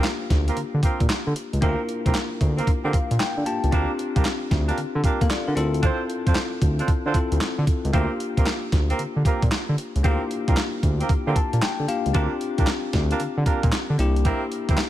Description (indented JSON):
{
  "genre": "R&B, new jack swing",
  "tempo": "114 BPM",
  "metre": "4/4",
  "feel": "swing 66% on 16ths",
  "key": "unclear",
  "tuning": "A4 = 440 Hz",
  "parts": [
    { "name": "bell-like tine electric piano", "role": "accompaniment", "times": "0.0-14.9 s", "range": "Bb3 to A5", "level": "-28 LUFS", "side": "left 5 dB", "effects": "auto-pan" },
    { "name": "mellow horn section", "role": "stabs", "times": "0.0-14.8 s", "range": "Bb3 to C5", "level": "-29 LUFS", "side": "right 4 dB", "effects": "none" },
    { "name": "clean 12-bit digital drum machine", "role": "drums", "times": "0.0-14.9 s", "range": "handclaps, hi-hat, kick drum, snare drum", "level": "-23 LUFS", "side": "equal", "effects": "none" },
    { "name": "smooth synth bass", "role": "bass", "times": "0.3-14.8 s", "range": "C2 to D3", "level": "-23 LUFS", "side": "equal", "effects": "none" }
  ],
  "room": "little or no reverb",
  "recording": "none",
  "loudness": "-20 LUFS",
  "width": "side -13 dB against mid",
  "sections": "0.0-14.9 A section",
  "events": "tine electric piano fill 2.7-3.7, 11.1-12.1",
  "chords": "0.0 C7sus4; 3.7 Bb6; 5.6 Dm7; 7.9 C7sus4; 12.1 Bb6; 14.0 C7"
}